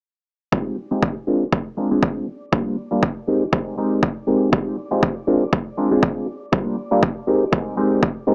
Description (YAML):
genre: filtered disco house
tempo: 120 BPM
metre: 4/4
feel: swing 56% on 16ths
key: F dorian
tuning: A4 = 439 Hz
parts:
  - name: clav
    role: accompaniment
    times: 0.5-8.3 s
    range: G3 to C5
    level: -22 LUFS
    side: equal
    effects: phaser, vintage 12-bit sampler grit, sidechain pumping, low-pass filter
  - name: string machine, full ensemble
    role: sustained chords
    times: 0.5-8.3 s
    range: D6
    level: -47 LUFS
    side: equal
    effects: none
  - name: electronic kick drum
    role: drums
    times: 0.5-8.1 s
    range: none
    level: -22 LUFS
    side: equal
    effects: none
room: light reverb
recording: small speaker sound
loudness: -21 LUFS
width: mono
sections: 0.5-8.3 A section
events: filter sweep 0.5-8.3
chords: 0.5 Fm9; 1.3 Bb7; 2.3 Gm7; 3.3 Abmaj7; 4.5 Fm9; 5.3 Bb7; 6.3 Gm7; 7.3 Abmaj7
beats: | 0.53 1.03 1.53 2.03 | 2.53 3.03 3.53 4.03 | 4.53 5.03 5.53 6.03 | 6.53 7.03 7.53 8.03